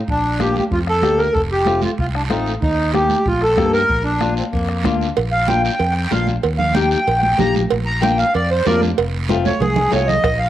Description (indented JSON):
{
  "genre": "latin, cumbia",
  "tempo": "189 BPM",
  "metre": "4/4",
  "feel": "straight",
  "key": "Bb major",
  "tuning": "A4 = 440 Hz",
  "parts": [
    { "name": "accordion", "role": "melody", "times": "0.1-10.5 s", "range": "Bb3 to Bb5", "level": "-18 LUFS", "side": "right 1 dB", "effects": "cassette tape" },
    { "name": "fingered electric bass", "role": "bass", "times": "0.1-10.5 s", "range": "F1 to G2", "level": "-22 LUFS", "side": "equal", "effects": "none" },
    { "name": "bombo", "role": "percussion", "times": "0.1-5.0, 10.2-10.4 s", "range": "none", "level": "-25 LUFS", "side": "equal", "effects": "none" },
    { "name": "guiro", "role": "percussion", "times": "0.1-10.5 s", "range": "none", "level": "-31 LUFS", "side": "right 7 dB", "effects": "none" },
    { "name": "nylon-string guitar", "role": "accompaniment", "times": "0.4-10.1 s", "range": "A3 to G4", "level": "-22 LUFS", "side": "left 7 dB", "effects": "cassette tape" },
    { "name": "congas", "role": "percussion", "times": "0.4-10.4 s", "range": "none", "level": "-25 LUFS", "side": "right 6 dB", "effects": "none" },
    { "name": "cowbell and timbales", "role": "percussion", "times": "5.2-10.4 s", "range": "none", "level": "-22 LUFS", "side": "right 7 dB", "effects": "none" }
  ],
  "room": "moderate spring reverb, RT60 1.3 s, studio reverb",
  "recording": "home recording on cassette",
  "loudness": "-15 LUFS",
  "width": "side -12 dB against mid",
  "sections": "0.0-5.2 A section; 5.2-10.5 B section",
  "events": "accordion solo 5.2-10.5; drum fill 9.3-10.2",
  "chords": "0.1 Bb; 1.4 F; 2.6 Eb; 3.9 Bb; 6.4 Eb; 7.7 Bb; 9.0 F",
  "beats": "| 0.08 0.40 0.72 1.04 | 1.35 1.67 1.99 2.31 | 2.63 2.94 3.26 3.58 | 3.90 4.22 4.53 4.85 | 5.17 5.49 5.80 6.12 | 6.44 6.75 7.07 7.39 | 7.71 8.02 8.34 8.66 | 8.97 9.29 9.61 9.93 | 10.24"
}